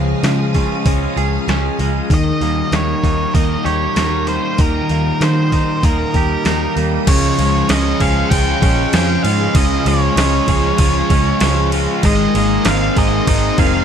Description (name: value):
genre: rock, shoegaze and dream pop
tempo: 97 BPM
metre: 4/4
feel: straight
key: unclear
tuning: A4 = 436 Hz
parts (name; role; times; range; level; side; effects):
- phased string machine; sustained chords; 0.0-13.8 s; Ab4 to Eb6; -28 LUFS; equal; ensemble chorus, phaser
- direct-recorded clean electric guitar; arpeggios; 0.0-13.8 s; Eb3 to Ab4; -26 LUFS; right 9 dB; analog chorus, tape echo
- overdriven semi-hollow guitar; riff; 0.0-13.8 s; Db3 to Bb4; -21 LUFS; left 11 dB; lush chorus
- twangy electric guitar; riff; 0.0-13.8 s; Db3 to Ab4; -22 LUFS; right 12 dB; reverse reverb
- vintage muted picked electric bass; bass; 0.0-13.8 s; F1 to Eb3; -19 LUFS; equal; none
- detuned 8-bit digital drum machine; drums; 0.2-13.7 s; crash cymbal, hi-hat, kick drum, snare drum; -18 LUFS; equal; overdrive
- octave-fuzz lead guitar; melody; 2.1-13.8 s; Bb4 to G5; -21 LUFS; right 1 dB; distortion, tape echo
- distorted electric guitar; riff; 7.1-13.8 s; Ab2 to Db4; -22 LUFS; left 2 dB; distortion
room: light reverb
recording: dark, warm production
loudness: -13 LUFS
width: side -8 dB against mid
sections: 0.0-7.1 A section; 7.1-13.8 B section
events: none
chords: 0.0 Db; 2.1 Eb; 7.1 Db; 12.0 Abadd9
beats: 0.24 0.86 1.49 | 2.11 2.73 3.35 3.97 | 4.59 5.21 5.83 6.46 | 7.08 7.70 8.31 8.93 | 9.55 10.17 10.79 11.41 | 12.03 12.65 13.27